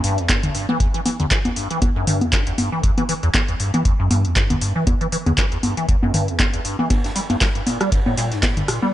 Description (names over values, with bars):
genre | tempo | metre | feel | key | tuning
acid house | 118 BPM | 4/4 | swing 56% on 16ths | E minor | A4 = 440 Hz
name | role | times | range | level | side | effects
liquid acid bass | riff | 0.0-8.9 s | E2 to G3 | -22 LUFS | equal | phaser, tube saturation, wide subtle chorus, sidechain pumping, digital delay
booming analog drum machine | drums | 0.0-8.9 s | congas, handclaps, hi-hat, rim click, toms | -21 LUFS | left 1 dB | none
electronic kick drum | drums | 0.3-8.5 s | none | -20 LUFS | equal | none
vintage drum kit | drums | 6.9-8.8 s | ride cymbal, snare drum | -32 LUFS | right 2 dB | sidechain pumping on cymbals, high-pass filter on cymbals, high-pass filter on snare, high-pass filter on room
room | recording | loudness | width
light reverb | nothing above 11.0 kHz | -17 LUFS | side -13 dB against mid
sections
0.0-8.9 A section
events
none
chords
none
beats
0.29 | 0.80 1.31 1.82 2.33 | 2.83 3.34 3.85 4.36 | 4.87 5.38 5.89 6.39 | 6.90 7.41 7.92 8.43